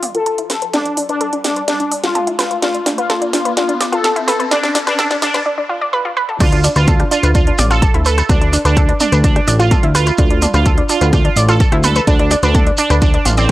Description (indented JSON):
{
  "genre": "melodic techno",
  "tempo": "127 BPM",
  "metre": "4/4",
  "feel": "straight",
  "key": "D dorian",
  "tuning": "A4 = 441 Hz",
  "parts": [
    { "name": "resonant sweep polysynth", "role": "melody", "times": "0.0-13.5 s", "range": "C4 to A4", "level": "-18 LUFS", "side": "equal", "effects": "chorus, sidechain pumping, analog delay" },
    { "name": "analog pluck", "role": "arpeggios", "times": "0.0-13.5 s", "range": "D4 to D5", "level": "-18 LUFS", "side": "equal", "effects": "chorus, sidechain pumping, analog delay" },
    { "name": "house drum kit", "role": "drums", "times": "0.0-13.5 s", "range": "crash cymbal, hi-hat, rim click, snare drum, toms", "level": "-22 LUFS", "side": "right 1 dB", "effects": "sidechain pumping on hats, high-pass filter on hats, small room ambience, high-pass filter on snare, sidechain pumping on toms, high-pass filter on toms, sidechain pumping on cymbals, high-pass filter on cymbals" },
    { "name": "riser", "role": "sound effects", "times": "0.7-5.5 s", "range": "none", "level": "-28 LUFS", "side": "equal", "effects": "none" },
    { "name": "fat analog bass", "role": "bass", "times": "6.4-13.5 s", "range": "A1 to D2", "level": "-14 LUFS", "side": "equal", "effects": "sidechain pumping" },
    { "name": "electronic kick drum", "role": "drums", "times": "6.4-13.5 s", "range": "none", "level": "-14 LUFS", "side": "equal", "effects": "small room ambience" },
    { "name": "shekere", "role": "percussion", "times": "6.4-13.5 s", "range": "none", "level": "-23 LUFS", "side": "right 2 dB", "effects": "none" }
  ],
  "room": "little or no reverb",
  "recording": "dry, gritty hardware recording, transformer saturation, high-pass filter",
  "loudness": "-12 LUFS",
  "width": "side -16 dB against mid",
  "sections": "0.0-6.4 A section; 6.4-13.5 B section",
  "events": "build-up 0.0-6.4; drum fill 0.0-5.5, 5.9-6.4; filter sweep on synth arpeggio sound 0.0-6.4; filter sweep on analog polysynth 0.0-6.4; riser 0.7-5.5; break 5.5-6.4; drop 6.4-13.5",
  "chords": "0.0 Dm"
}